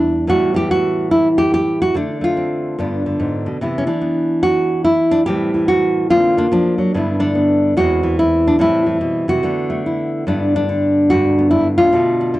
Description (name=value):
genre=solo jazz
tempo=144 BPM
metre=4/4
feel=swing 65% on 8ths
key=G major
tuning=A4 = 440 Hz
part: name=nylon-string guitar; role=solo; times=0.0-12.4 s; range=E2 to G4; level=-14 LUFS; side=equal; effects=none
room=light reverb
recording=worn, warbling old tape, cassette tape, warbly pitch drift, nothing above 10.8 kHz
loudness=-14 LUFS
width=side -16 dB against mid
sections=0.0-10.3 A section; 10.3-12.4 B section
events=none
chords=0.3 Asus2; 1.9 Dm7; 2.8 G7b9; 3.6 Cmaj9; 5.3 Am7; 6.1 D7alt; 6.9 G6; 7.8 E; 8.6 Am7; 9.4 D69; 10.3 G6